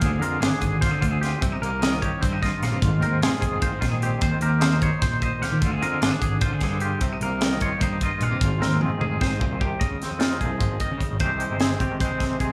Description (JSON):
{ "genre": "math rock and midwest emo", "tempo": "300 BPM (eighths)", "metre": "7/8", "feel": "straight", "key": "Ab major", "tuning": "A4 = 440 Hz", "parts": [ { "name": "twangy electric guitar", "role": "accompaniment", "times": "0.0-12.5 s", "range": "G2 to C5", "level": "-30 LUFS", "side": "equal", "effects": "tremolo" }, { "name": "twangy electric guitar", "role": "arpeggios", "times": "0.0-12.5 s", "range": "F4 to F5", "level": "-32 LUFS", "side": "equal", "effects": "none" }, { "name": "fuzz picked electric bass", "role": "bass", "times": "0.0-12.5 s", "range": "F1 to Eb3", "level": "-28 LUFS", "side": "equal", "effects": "overdrive" }, { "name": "crisp fusion drum kit", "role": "drums", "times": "0.0-12.5 s", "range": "hi-hat, kick drum, snare drum, toms", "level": "-28 LUFS", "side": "equal", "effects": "none" } ], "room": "moderate studio reverb, RT60 0.8 s", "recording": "band playing live in one room, studio ambience", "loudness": "-23 LUFS", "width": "mono", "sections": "0.0-9.8 A section; 9.8-12.5 B section", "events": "drum fill 8.6-9.8", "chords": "0.0 Bb13; 1.4 Cm7; 2.8 Ab6; 4.2 Eb13; 5.6 Bb13; 7.0 Cm7; 8.4 Ab6; 9.8 Dbmaj9; 11.2 Abmaj7" }